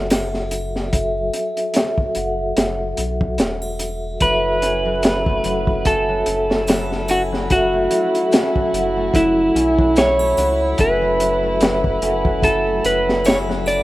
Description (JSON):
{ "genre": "trip hop", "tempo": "73 BPM", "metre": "4/4", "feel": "swing 56% on 16ths", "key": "F# minor", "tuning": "A4 = 436 Hz", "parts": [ { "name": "vibraphone with soft mallets", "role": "accompaniment", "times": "0.0-13.8 s", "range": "F#3 to F#5", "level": "-22 LUFS", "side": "equal", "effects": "harmonic tremolo, tape echo" }, { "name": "round analog bass", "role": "bass", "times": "0.0-13.8 s", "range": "E1 to C#2", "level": "-27 LUFS", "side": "equal", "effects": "tube saturation" }, { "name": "crunchy breakbeat drum kit", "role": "drums", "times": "0.1-13.8 s", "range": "hi-hat, kick drum, snare drum", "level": "-20 LUFS", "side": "equal", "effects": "none" }, { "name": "triangle and maracas", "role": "percussion", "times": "0.1-13.8 s", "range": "none", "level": "-38 LUFS", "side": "right 2 dB", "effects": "none" }, { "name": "electric slide guitar", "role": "melody", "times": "4.2-13.8 s", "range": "E4 to D5", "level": "-18 LUFS", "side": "equal", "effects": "dub echo" }, { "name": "warm chamber violin section", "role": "sustained chords", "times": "4.2-13.8 s", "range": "E4", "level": "-27 LUFS", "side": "right 2 dB", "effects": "none" }, { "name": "concert harp", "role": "arpeggios", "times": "4.2-13.8 s", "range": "F#3 to C#4", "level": "-28 LUFS", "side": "left 5 dB", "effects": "ping-pong delay" } ], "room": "light reverb, small room ambience", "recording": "rough home demo mix, vinyl crackle", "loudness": "-16 LUFS", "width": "side -17 dB against mid", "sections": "0.0-13.8 A section", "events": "none", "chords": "0.0 F#m7" }